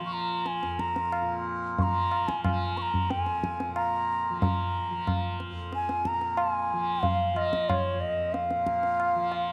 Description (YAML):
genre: indian classical, Hindustani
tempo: 92 BPM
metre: 4/4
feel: straight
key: F raga malkauns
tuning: A4 = 439 Hz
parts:
  - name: tanpura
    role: drone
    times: 0.0-9.5 s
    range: F2 to F3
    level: -36 LUFS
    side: equal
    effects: none
  - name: bansuri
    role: melody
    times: 0.1-9.5 s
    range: Db5 to Db6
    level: -31 LUFS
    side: equal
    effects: none
  - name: tabla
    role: percussion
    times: 0.5-9.5 s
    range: none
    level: -33 LUFS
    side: equal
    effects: none
room: moderate echo chamber reverb, RT60 1.6 s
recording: none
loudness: -28 LUFS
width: mono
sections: 0.0-9.5 A section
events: none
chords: none